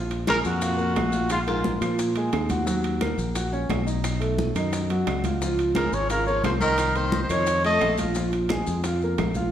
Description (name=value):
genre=Afro-Cuban jazz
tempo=175 BPM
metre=4/4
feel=straight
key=Bb minor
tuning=A4 = 439 Hz
part: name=warm grand piano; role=accompaniment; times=0.0-9.5 s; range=D#3 to Gb5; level=-28 LUFS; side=right 1 dB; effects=none
part: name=modern bright fingered electric bass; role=bass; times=0.0-9.5 s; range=Ab1 to Bb2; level=-27 LUFS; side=equal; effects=none
part: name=bongos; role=percussion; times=0.1-9.5 s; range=none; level=-36 LUFS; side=left 3 dB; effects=none
part: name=congas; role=percussion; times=0.1-9.5 s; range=none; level=-32 LUFS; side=left 1 dB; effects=none
part: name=maracas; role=percussion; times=0.1-9.5 s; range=none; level=-40 LUFS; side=left 4 dB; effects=none
part: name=timbales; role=percussion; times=0.1-9.4 s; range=none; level=-35 LUFS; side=right 6 dB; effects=none
part: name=mellow trumpet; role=melody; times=0.3-1.8, 5.8-8.0 s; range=F4 to Eb5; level=-24 LUFS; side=equal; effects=none
part: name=growling baritone saxophone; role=second line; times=0.3-1.8, 5.7-8.0 s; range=Ab2 to A3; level=-30 LUFS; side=left 3 dB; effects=none
part: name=claves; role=percussion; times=0.3-9.4 s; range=none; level=-40 LUFS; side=right 2 dB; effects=none
room=wet large studio reverb, RT60 1.2 s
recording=heard from further back in the room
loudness=-22 LUFS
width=side -10 dB against mid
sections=0.0-9.5 A section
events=none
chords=0.0 Bb5; 2.7 Ebm7; 4.0 B9; 5.4 Db6; 6.8 Dbmaj13/C; 7.5 F7; 8.2 Bb5